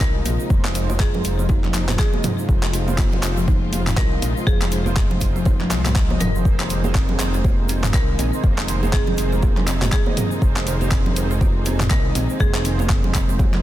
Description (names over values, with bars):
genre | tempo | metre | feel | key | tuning
afro house | 121 BPM | 4/4 | swing 58% on 16ths | unclear | A4 = 441 Hz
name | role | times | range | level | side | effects
marimba with hard mallets | melody | 0.0-12.6 s | Ab4 to Bb4 | -30 LUFS | right 1 dB | ping-pong delay
warm symphonic string section | sustained chords | 0.0-13.6 s | C3 to F4 | -32 LUFS | left 3 dB | sidechain pumping
mellow synth brass | stabs | 0.0-13.6 s | Ab3 to Eb5 | -30 LUFS | right 4 dB | chorus, sidechain pumping, ping-pong delay
smooth gliding synth bass | bass | 0.0-13.6 s | F1 to C2 | -23 LUFS | equal | sidechain pumping
deep house drum kit | drums | 0.0-13.6 s | handclaps, hi-hat, toms | -26 LUFS | equal | none
electronic kick drum | drums | 0.0-13.5 s | none | -19 LUFS | equal | none
congas | percussion | 0.0-13.6 s | none | -29 LUFS | right 3 dB | none
tube shaker | percussion | 0.0-13.5 s | none | -37 LUFS | right 6 dB | none
buzzing kalimba | arpeggios | 0.2-13.5 s | C3 to Ab4 | -28 LUFS | left 2 dB | sidechain pumping
room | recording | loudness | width
studio reverb | dense, heavily limited modern master | -17 LUFS | side -14 dB against mid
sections
0.0-13.6 A section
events
none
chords
0.0 Abadd9/F